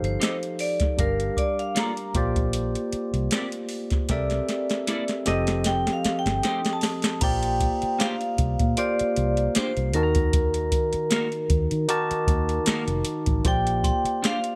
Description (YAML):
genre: lush 1970s-style soul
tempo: 77 BPM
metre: 4/4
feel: swing 54% on 16ths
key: Bb major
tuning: A4 = 440 Hz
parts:
  - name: vibraphone with medium hard mallets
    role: melody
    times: 0.0-14.6 s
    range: Bb4 to Bb5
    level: -30 LUFS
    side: equal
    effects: none
  - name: barky tine electric piano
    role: accompaniment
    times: 0.0-14.6 s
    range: Eb3 to Bb5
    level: -31 LUFS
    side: equal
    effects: overdrive
  - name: vintage muted fingered electric bass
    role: bass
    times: 0.0-14.1 s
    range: F1 to Eb3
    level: -29 LUFS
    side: equal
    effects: none
  - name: soft vintage rhythm box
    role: drums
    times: 0.0-14.6 s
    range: crash cymbal, hi-hat, kick drum, snare drum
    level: -28 LUFS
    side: equal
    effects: none
  - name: clean electric guitar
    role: riff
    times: 0.2-14.4 s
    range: A3 to Eb5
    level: -34 LUFS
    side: equal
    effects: analog chorus
  - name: glockenspiel with brass mallets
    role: texture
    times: 1.4-14.6 s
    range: Bb5 to E6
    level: -42 LUFS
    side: equal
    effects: none
room: light reverb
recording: none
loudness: -24 LUFS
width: mono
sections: 0.0-7.2 A section; 7.2-14.6 B section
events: vibraphone solo 0.0-7.2; drum fill 4.1-7.2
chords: 0.0 F9; 1.0 Gm9; 2.2 Bb69; 4.1 C13; 5.3 F9; 7.2 Bb69; 9.9 Ebm; 13.5 Bb69